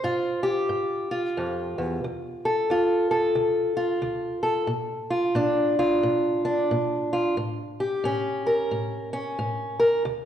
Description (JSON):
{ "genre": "blues", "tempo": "90 BPM", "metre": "4/4", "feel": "swing 62% on 8ths", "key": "unclear", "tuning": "A4 = 441 Hz", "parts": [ { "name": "fingerpicked acoustic archtop guitar", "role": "solo", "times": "0.0-10.3 s", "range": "D2 to C5", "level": "-23 LUFS", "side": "equal", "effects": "none" } ], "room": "wet recital hall reverb, RT60 1.5 s", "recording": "recorded in a church or concert hall", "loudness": "-23 LUFS", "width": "side -10 dB against mid", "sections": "0.0-10.3 A section", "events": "none", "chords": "0.0 G7(no3); 2.0 Dm; 4.7 Bb; 7.4 A7", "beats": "0.04 0.70 1.37 | 2.04 2.71 3.37 4.04 | 4.71 5.38 6.04 6.71 | 7.38 8.05 8.72 9.39 | 10.06" }